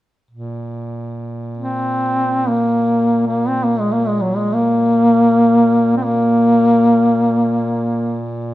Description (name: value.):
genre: caucasian folk, Caucasian lament.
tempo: free time.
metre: none.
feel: none.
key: unclear.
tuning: A4 = 440 Hz.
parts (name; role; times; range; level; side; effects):
mellow duduk; drone; 0.3-8.5 s; Bb2; -25 LUFS; right 1 dB; none.
dark duduk; melody; 1.6-8.2 s; Gb3 to C4; -13 LUFS; equal; none.
room: moderate recital hall reverb, RT60 1.5 s.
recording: minimal, uncompressed stereo recording.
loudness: -13 LUFS.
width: side -16 dB against mid.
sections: 0.3-8.5 A section.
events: none.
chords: none.